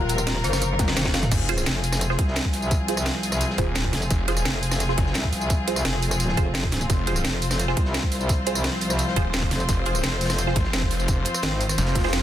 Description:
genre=dark technical drum and bass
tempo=172 BPM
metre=4/4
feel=straight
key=F minor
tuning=A4 = 440 Hz
part: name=clear symphonic string section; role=sustained chords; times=0.0-12.2 s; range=F3 to C5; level=-29 LUFS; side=left 2 dB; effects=sidechain pumping
part: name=metallic wobble bass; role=bass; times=0.0-11.8 s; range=Eb1 to C2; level=-26 LUFS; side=equal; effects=chorus
part: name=dark detuned synth bell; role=arpeggios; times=0.1-1.2 s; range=F4 to F5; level=-32 LUFS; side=left 5 dB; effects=chorus, phaser, sidechain pumping, digital delay
part: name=crunchy breakbeat drum kit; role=drums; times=0.1-12.2 s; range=hi-hat, snare drum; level=-38 LUFS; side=equal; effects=none
part: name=drum and bass drum kit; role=drums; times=0.1-12.2 s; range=crash cymbal, hi-hat, rim click, snare drum, tambourine, toms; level=-26 LUFS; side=right 1 dB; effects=overdrive
part: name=electronic kick drum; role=drums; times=0.8-12.0 s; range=none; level=-24 LUFS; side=equal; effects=overdrive
part: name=snarling distorted saw bass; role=bass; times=1.3-12.2 s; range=Eb1 to Ab1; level=-26 LUFS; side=equal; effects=distortion, overdrive
part: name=filtered dub chord stab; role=stabs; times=1.5-12.2 s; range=F4 to C5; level=-31 LUFS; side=right 4 dB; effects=phaser, digital delay
part: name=swell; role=sound effects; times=11.9-12.2 s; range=none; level=-30 LUFS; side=right 1 dB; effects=none
room=little or no reverb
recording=dense, heavily limited modern master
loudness=-21 LUFS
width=side -11 dB against mid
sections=0.0-1.3 A section; 1.3-12.2 A section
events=drop 0.0-1.3, 1.3-12.2; drum fill 0.8-1.3; swell 11.9-12.2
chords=0.0 F5; 1.3 Fm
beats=0.27 0.62 0.97 | 1.31 1.66 2.01 2.36 | 2.71 3.06 3.41 3.76 | 4.11 4.46 4.80 5.15 | 5.50 5.85 6.20 6.55 | 6.90 7.25 7.59 7.94 | 8.29 8.64 8.99 9.34 | 9.69 10.04 10.38 10.73 | 11.08 11.43 11.78 12.13

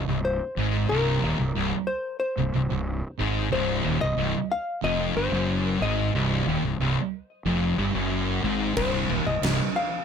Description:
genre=stoner and doom metal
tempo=92 BPM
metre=4/4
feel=straight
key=unclear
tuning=A4 = 440 Hz
part: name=hollow-body jazz guitar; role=melody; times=0.0-10.0 s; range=Bb4 to F5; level=-29 LUFS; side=left 3 dB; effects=tape echo
part: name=distorted electric guitar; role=riff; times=0.0-9.6 s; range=C2 to Ab2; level=-30 LUFS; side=equal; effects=distortion
part: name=thick fuzz guitar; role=riff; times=0.0-9.6 s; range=C2 to Ab2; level=-29 LUFS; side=left 10 dB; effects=distortion
part: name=thick fuzz guitar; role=riff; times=0.0-9.6 s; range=C2 to Ab2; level=-29 LUFS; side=right 9 dB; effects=distortion
part: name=fuzz fingered electric bass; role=bass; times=0.0-9.6 s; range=C1 to Ab1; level=-29 LUFS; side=right 1 dB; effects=overdrive
part: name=oversized low-tuned drum kit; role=drums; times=8.8-9.6 s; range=crash cymbal, kick drum, snare drum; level=-29 LUFS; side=right 1 dB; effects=none
room=little or no reverb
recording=none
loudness=-23 LUFS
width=side -7 dB against mid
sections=0.0-10.0 A section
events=none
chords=0.0 Cm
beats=0.25 | 0.91 1.56 2.21 2.87 | 3.52 4.18 4.84 5.49 | 6.15 6.80 7.46 8.12 | 8.77 9.43

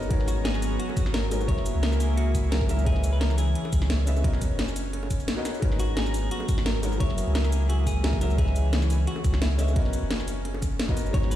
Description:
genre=liquid drum and bass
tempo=174 BPM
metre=4/4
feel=swing 53% on 16ths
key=C# dorian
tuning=A4 = 439 Hz
part: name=felt-muted upright piano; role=accompaniment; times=0.0-11.4 s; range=F#3 to A#5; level=-34 LUFS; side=left 2 dB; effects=dub echo
part: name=lush unison pad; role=sustained chords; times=0.0-11.4 s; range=E3 to A#5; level=-34 LUFS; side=equal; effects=chorus, sidechain pumping
part: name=warm sub bass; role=bass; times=0.0-11.4 s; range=F#1 to C#2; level=-25 LUFS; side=equal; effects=none
part: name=drum and bass drum kit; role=drums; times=0.0-11.4 s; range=cabasa, hi-hat, snare drum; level=-32 LUFS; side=equal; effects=none
part: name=electronic kick drum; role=drums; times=0.1-11.2 s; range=none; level=-26 LUFS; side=equal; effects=none
part: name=clean electric guitar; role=melody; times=0.3-11.4 s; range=E4 to C#5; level=-36 LUFS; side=equal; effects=ping-pong delay
part: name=bongos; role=percussion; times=0.9-11.0 s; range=none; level=-43 LUFS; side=right 2 dB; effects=none
room=little or no reverb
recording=played on a big sound system in a bare room, stone room reverb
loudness=-23 LUFS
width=side -12 dB against mid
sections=0.0-11.4 A section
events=none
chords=0.1 G#m11; 1.5 F#9; 2.9 C#m9; 4.2 Bmaj9; 5.6 G#m11; 7.0 F#9; 8.4 C#m9; 9.8 Bmaj9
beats=| 0.11 0.45 0.80 1.14 | 1.49 1.83 2.18 2.52 | 2.87 3.21 3.56 3.90 | 4.25 4.59 4.93 5.28 | 5.62 5.97 6.31 6.66 | 7.00 7.35 7.69 8.04 | 8.38 8.73 9.07 9.42 | 9.76 10.11 10.45 10.80 | 11.14

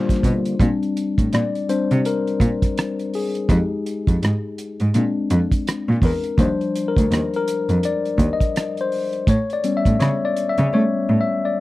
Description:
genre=R&B, neo-soul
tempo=83 BPM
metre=4/4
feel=swing 60% on 16ths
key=unclear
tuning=A4 = 440 Hz
part: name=tine electric piano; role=accompaniment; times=0.0-11.6 s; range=F3 to E5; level=-21 LUFS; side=left 3 dB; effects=none
part: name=tonewheel organ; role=sustained chords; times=0.0-0.6 s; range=D3 to Bb3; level=-29 LUFS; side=right 6 dB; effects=slow rotary speaker, chorus vibrato
part: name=cloth-damped thuddy drum kit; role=drums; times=0.1-10.7 s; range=hi-hat, kick drum, rim click, snare drum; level=-21 LUFS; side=right 1 dB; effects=none
part: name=warm cello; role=bass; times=0.2-11.2 s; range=D2 to A3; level=-20 LUFS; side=right 1 dB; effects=none
room=little or no reverb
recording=dry, close 1970s-style studio recording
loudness=-18 LUFS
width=side -17 dB against mid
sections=0.6-11.6 A section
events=tine electric piano solo 0.6-11.6; drum fill 10.7-11.6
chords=0.0 Bb6; 3.5 Fm7 (rootless); 4.9 Bb7; 6.4 Ebmaj7; 9.3 A7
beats=| 0.60 1.32 2.04 2.77 | 3.49 4.21 4.93 5.66 | 6.38 7.10 7.83 8.55 | 9.27 9.99 10.72 11.44

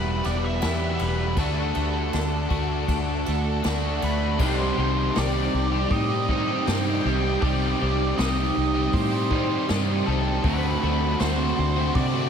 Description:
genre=rock, shoegaze and dream pop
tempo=79 BPM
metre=4/4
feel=straight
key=unclear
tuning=A4 = 440 Hz
part: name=octave-fuzz lead guitar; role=melody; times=0.0-12.3 s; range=A4 to G5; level=-30 LUFS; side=equal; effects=distortion, diffuse ambient delay
part: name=string machine, full ensemble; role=sustained chords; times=0.0-12.3 s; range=C4 to E6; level=-33 LUFS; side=equal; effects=ensemble chorus
part: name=twelve-string electric guitar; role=arpeggios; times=0.0-12.3 s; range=G3 to F#4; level=-35 LUFS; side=right 8 dB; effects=none
part: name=overdriven electric guitar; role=riff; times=0.0-12.3 s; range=E2 to G4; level=-30 LUFS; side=left 9 dB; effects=ensemble chorus
part: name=overdriven semi-hollow guitar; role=riff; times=0.0-12.3 s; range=E2 to G4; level=-29 LUFS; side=right 8 dB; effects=reverse reverb
part: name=vintage muted fingered electric bass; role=bass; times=0.0-12.3 s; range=E1 to C3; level=-26 LUFS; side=equal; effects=none
part: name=jazz brush drum kit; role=drums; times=0.2-12.1 s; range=crash cymbal, hi-hat, kick drum, ride cymbal, snare drum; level=-30 LUFS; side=equal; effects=none
part: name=crunchy overdriven guitar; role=riff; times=4.4-12.3 s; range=C3 to F#4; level=-30 LUFS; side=equal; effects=none
room=moderate huge ambient reverb, RT60 7.5 s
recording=dreamy mix soaked in reverb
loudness=-21 LUFS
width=side -7 dB against mid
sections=0.0-4.4 A section; 4.4-12.3 B section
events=none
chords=0.0 Emadd9; 1.4 D; 4.4 Cmadd9; 10.4 D7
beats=0.62 | 1.38 2.13 2.89 3.64 | 4.40 5.15 5.91 6.67 | 7.42 8.18 8.94 9.69 | 10.45 11.21 11.96

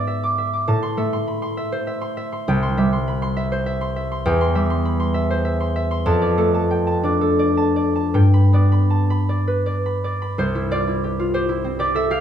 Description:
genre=classical, solo harp piece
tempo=51-68 BPM (dotted quarters)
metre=6/8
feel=rubato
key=C major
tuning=A4 = 441 Hz
part: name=concert harp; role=solo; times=0.0-12.2 s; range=C2 to D6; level=-18 LUFS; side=equal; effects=none
room=wet recital hall reverb, RT60 1.7 s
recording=minimal, uncompressed stereo recording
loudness=-18 LUFS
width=side -9 dB against mid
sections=0.0-10.4 A section; 10.4-12.2 B section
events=none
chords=0.0 E7/G#; 0.7 Am; 2.5 C; 4.3 C/E; 6.1 Dm/F; 8.2 G; 10.4 C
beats=| 0.68 1.57 | 2.48 3.38 | 4.26 5.15 | 6.06 7.04 | 8.15 9.29 | 10.39 11.35

